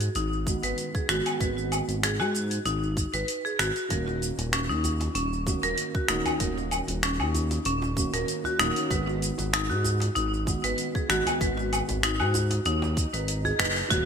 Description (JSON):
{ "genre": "organic downtempo", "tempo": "96 BPM", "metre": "4/4", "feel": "swing 53% on 16ths", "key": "unclear", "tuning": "A4 = 440 Hz", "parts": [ { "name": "felt-muted upright piano", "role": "accompaniment", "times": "0.0-14.1 s", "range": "Eb3 to Gb4", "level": "-34 LUFS", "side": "right 3 dB", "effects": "ensemble chorus, sidechain pumping, low-pass filter, digital delay" }, { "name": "smooth gliding synth bass", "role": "bass", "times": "0.0-14.1 s", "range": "Eb1 to Ab2", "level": "-30 LUFS", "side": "equal", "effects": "sidechain pumping" }, { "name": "deep house drum kit", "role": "drums", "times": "0.0-14.0 s", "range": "finger snaps, hi-hat, shaker, woodblock", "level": "-29 LUFS", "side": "equal", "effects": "none" }, { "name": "marimba with hard mallets", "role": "arpeggios", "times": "0.2-14.1 s", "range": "Db4 to Cb5", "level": "-29 LUFS", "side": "left 1 dB", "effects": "low-pass filter, digital delay" }, { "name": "electronic kick drum", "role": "drums", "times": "0.5-14.0 s", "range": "none", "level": "-29 LUFS", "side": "equal", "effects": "none" }, { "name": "djembe", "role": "percussion", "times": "4.1-13.7 s", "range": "none", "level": "-40 LUFS", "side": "right 3 dB", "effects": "none" }, { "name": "swell", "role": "sound effects", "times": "12.9-13.9 s", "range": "none", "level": "-39 LUFS", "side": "right 4 dB", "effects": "none" } ], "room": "moderate lush hall reverb, RT60 1.7 s", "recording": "bright 1980s-style digital production", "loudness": "-24 LUFS", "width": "side -7 dB against mid", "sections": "0.0-13.9 A section", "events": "swell 12.9-13.9; band accent 13.6-13.9", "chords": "0.0 Abm7; 3.9 Ebm7; 8.9 Abm7", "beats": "0.16 0.78 | 1.41 2.03 2.66 3.28 | 3.91 4.53 5.16 5.78 | 6.41 7.03 7.66 8.28 | 8.91 9.53 10.16 10.78 | 11.41 12.03 12.66 13.28 | 13.91" }